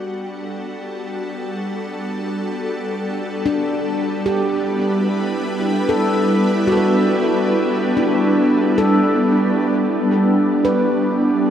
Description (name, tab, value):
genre	ambient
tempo	free time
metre	none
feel	none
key	G major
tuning	A4 = 440 Hz
part	ethereal airy pad	sustained chords	0.0-11.5 s	G3 to B4	-18 LUFS	right 1 dB	ensemble chorus, built-in reverb
part	organ-like drone	drone	0.0-9.9 s	G3	-29 LUFS	equal	ensemble chorus, built-in reverb
part	handpan	arpeggios	3.5-11.5 s	D4 to B4	-20 LUFS	left 2 dB	diffuse ambient delay
room	wet cathedral reverb, RT60 5.0 s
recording	in a vast, echoing space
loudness	-16 LUFS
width	side -9 dB against mid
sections	0.0-9.8 A section; 9.8-11.5 A section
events	fade-in on ambient pad 0.0-9.8; fade-in on synth drone 0.0-9.8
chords	0.0 Gmaj9; 9.8 Gadd9